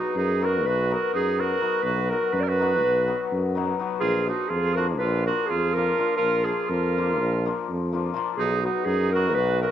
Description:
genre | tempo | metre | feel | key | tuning
balkan folk, Balkan wedding band | 248 BPM (eighths) | 9/8 | straight | unclear | A4 = 439 Hz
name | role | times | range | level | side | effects
mellow clarinet | melody | 0.0-9.7 s | F#4 to D5 | -26 LUFS | left 1 dB | cassette tape, plate reverb, tape echo
warm oboe | second line | 0.0-9.7 s | D#4 to Bb4 | -28 LUFS | right 10 dB | cassette tape, plate reverb
hammered dulcimer | accompaniment | 0.0-9.7 s | F3 to F#4 | -30 LUFS | left 8 dB | cassette tape, plate reverb
warm tuba | bass | 0.2-9.7 s | Bb1 to F#2 | -26 LUFS | equal | none
room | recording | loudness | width
moderate small room reverb, RT60 0.6 s | home recording on cassette | -22 LUFS | side -10 dB against mid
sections
0.0-8.4 A section; 8.4-9.7 A section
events
none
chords
0.0 B; 4.0 Bb; 8.4 B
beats
0.13 0.37 0.62 0.86 1.10 1.34 1.59 | 1.83 2.07 2.31 2.56 2.80 3.04 3.28 3.53 3.77 | 4.01 4.25 4.50 4.74 4.98 5.22 5.47 5.71 5.95 | 6.19 6.44 6.68 6.92 7.16 7.41 7.65 7.89 8.13 | 8.37 8.62 8.86 9.10 9.34 9.59

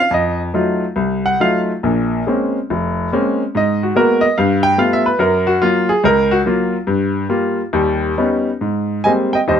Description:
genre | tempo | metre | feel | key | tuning
solo jazz | 141 BPM | 4/4 | swing 67% on 8ths, rubato | F minor | A4 = 440 Hz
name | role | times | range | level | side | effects
clear baby grand piano | solo | 0.0-9.6 s | F1 to Ab5 | -14 LUFS | equal | none
room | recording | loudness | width
light reverb | close, detailed microphones | -14 LUFS | side -8 dB against mid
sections
0.0-8.6 A section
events
grand piano solo 0.0-8.6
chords
0.1 F7b9; 1.8 Bbm9; 3.5 Abm9; 4.4 G9; 5.2 Gbmaj7; 6.9 Gm7; 7.7 Ebaug7; 8.6 Abmaj9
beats
| 0.12 0.54 0.96 1.40 | 1.83 2.27 2.70 3.12 | 3.54 3.95 4.37 4.78 | 5.19 5.61 6.03 6.45 | 6.87 7.30 7.73 8.18 | 8.62 9.05 9.48

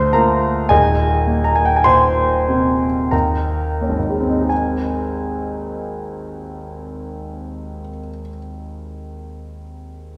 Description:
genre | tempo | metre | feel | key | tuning
classical | 42-56 BPM | 3/4 | rubato | Ab major | A4 = 435 Hz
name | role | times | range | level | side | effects
warm concert grand piano | accompaniment | 0.0-10.2 s | Eb1 to C6 | -19 LUFS | equal | none
room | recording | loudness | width
wet scoring stage reverb, RT60 1.9 s | recorded in a church or concert hall | -17 LUFS | mono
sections
0.0-4.5 A section; 4.5-8.4 B section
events
slowing down 0.0-4.5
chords
0.0 Bb/D; 0.7 Ebsus4; 3.1 Eb7; 4.5 Ab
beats
| 0.71 1.87 3.12 | 4.51 5.84 7.15

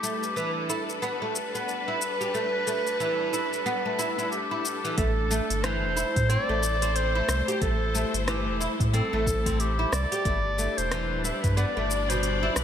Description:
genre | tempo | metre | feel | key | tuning
organic downtempo | 91 BPM | 4/4 | swing 59% on 16ths | A minor | A4 = 439 Hz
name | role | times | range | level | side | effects
warm clarinet | melody | 0.0-12.6 s | G4 to D5 | -29 LUFS | equal | ping-pong delay
clear symphonic string section | sustained chords | 0.0-12.6 s | G3 to D5 | -34 LUFS | left 3 dB | sidechain pumping
oud | arpeggios | 0.0-12.6 s | B2 to G4 | -30 LUFS | equal | ping-pong delay
deep house drum kit | drums | 0.0-12.6 s | hi-hat, rim click, shaker | -33 LUFS | left 2 dB | none
warm sub bass | bass | 5.0-12.6 s | D1 to A2 | -28 LUFS | equal | none
electronic kick drum | drums | 5.0-11.5 s | none | -30 LUFS | equal | none
room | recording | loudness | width
moderate lush hall reverb, RT60 2.4 s | bright 1980s-style digital production | -24 LUFS | side -9 dB against mid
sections
0.0-5.0 A section; 5.0-12.6 B section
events
none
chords
0.0 G6; 5.0 Am7; 10.3 G6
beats
0.36 1.02 1.68 | 2.34 3.00 3.66 4.32 | 4.98 5.64 6.30 6.96 | 7.62 8.28 8.94 9.59 | 10.25 10.91 11.57 12.23

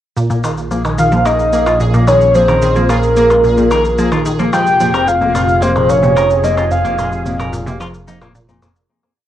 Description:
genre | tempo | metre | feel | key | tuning
ambient, sequencer-driven space music | 110 BPM | 4/4 | straight | Bb minor | A4 = 441 Hz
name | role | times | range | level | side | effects
sweeping resonant pad | sustained chords | 0.2-8.9 s | Bb2 to F5 | -24 LUFS | left 2 dB | chorus, cassette tape
resonant blip pluck | riff | 0.2-8.7 s | F2 to F4 | -18 LUFS | right 1 dB | chorus, cassette tape, analog delay
fat analog bass | bass | 0.2-8.9 s | F1 to Bb1 | -18 LUFS | equal | none
cabasa and percussion blips | percussion | 0.2-8.9 s | none | -26 LUFS | left 1 dB | cassette tape, analog delay
pulsing gated texture | texture | 0.2-8.9 s | Ab4 | -27 LUFS | right 2 dB | chorus, built-in reverb, cassette tape
semi-hollow electric guitar | arpeggios | 0.3-8.7 s | Bb2 to Bb4 | -22 LUFS | left 1 dB | auto-pan, low-pass filter, cassette tape, analog delay
soft octave-layered synth lead | melody | 1.0-7.2 s | Bb4 to G5 | -13 LUFS | equal | chorus, cassette tape, analog delay
room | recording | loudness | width
moderate studio reverb, RT60 0.6 s | home recording on cassette | -10 LUFS | side -12 dB against mid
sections
0.2-8.9 A section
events
fade-in on analog synth pad 0.2-8.9; filter sweep on clean electric guitar 0.2-8.9; fade-out 6.0-8.9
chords
0.2 Bbm; 4.5 Fm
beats
| 0.17 0.71 1.26 1.80 | 2.35 2.89 3.44 3.98 | 4.53 5.08 5.62 6.17 | 6.71 7.26 7.80 8.35

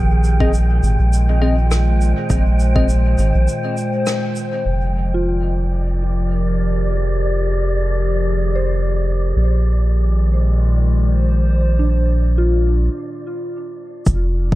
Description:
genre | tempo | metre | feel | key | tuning
ambient dub | 102 BPM | 4/4 | swing 55% on 16ths | unclear | A4 = 441 Hz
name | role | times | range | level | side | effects
warbly tape-like pad | sustained chords | 0.0-14.6 s | Bb2 to C5 | -23 LUFS | equal | chorus, built-in reverb
soft dub sub bass | bass | 0.0-14.6 s | F1 to Bb1 | -16 LUFS | equal | none
wind-like tuned noise texture | texture | 0.0-12.9 s | D5 to G5 | -29 LUFS | right 1 dB | built-in reverb
shaker and rim click | drums | 0.2-4.5, 14.1-14.2 s | none | -29 LUFS | equal | low-pass filter on snare, low-pass filter on perc, low-pass filter on room
bell-like tine electric piano | stabs | 0.4-2.9 s | C4 to Eb5 | -26 LUFS | left 2 dB | analog chorus, dub echo
electronic kick drum | drums | 0.4-2.9, 14.1-14.6 s | none | -19 LUFS | equal | none
soft synth bell | arpeggios | 5.1-14.2 s | D4 to C5 | -27 LUFS | equal | chorus, low-pass filter, dub echo
room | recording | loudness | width
little or no reverb | dark, warm production | -15 LUFS | side -17 dB against mid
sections
0.0-4.7 A section; 4.7-14.1 B section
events
break 3.5-4.7, 12.9-14.1; band accent 4.1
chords
0.0 Bb9sus4; 4.7 Fm11; 9.4 Bb9sus4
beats
0.54 1.12 1.71 | 2.30 2.89 3.48 4.07 | 4.65 5.24 5.83 6.42 | 7.01 7.59 8.18 8.77 | 9.36 9.95 10.54 11.12 | 11.71 12.30 12.89 13.48 | 14.07

